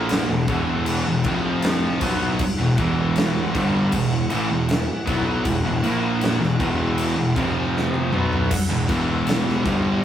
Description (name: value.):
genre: stoner and doom metal.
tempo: 79 BPM.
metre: 4/4.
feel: straight.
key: E minor.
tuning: A4 = 440 Hz.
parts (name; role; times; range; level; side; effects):
phased string machine; sustained chords; 0.0-10.0 s; F3 to F#5; -32 LUFS; left 1 dB; ensemble chorus, phaser.
scooped high-gain guitar; riff; 0.0-10.0 s; E2 to B3; -26 LUFS; equal; distortion.
thick fuzz guitar; riff; 0.0-10.0 s; E2 to B3; -27 LUFS; left 3 dB; distortion.
thick fuzz guitar; riff; 0.0-10.0 s; E2 to B3; -26 LUFS; right 3 dB; distortion.
fuzz picked electric bass; bass; 0.0-10.0 s; E1 to B1; -26 LUFS; equal; overdrive.
big rock drum kit; drums; 0.1-9.8 s; crash cymbal, kick drum, snare drum, toms; -25 LUFS; equal; none.
room: moderate studio reverb, RT60 0.6 s.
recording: rough rehearsal-room recording.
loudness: -19 LUFS.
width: side -10 dB against mid.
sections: 0.0-10.0 A section.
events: drum fill 7.7-8.5.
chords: 0.0 E5; 1.2 F5; 2.0 Em; 7.4 F5; 8.1 Em.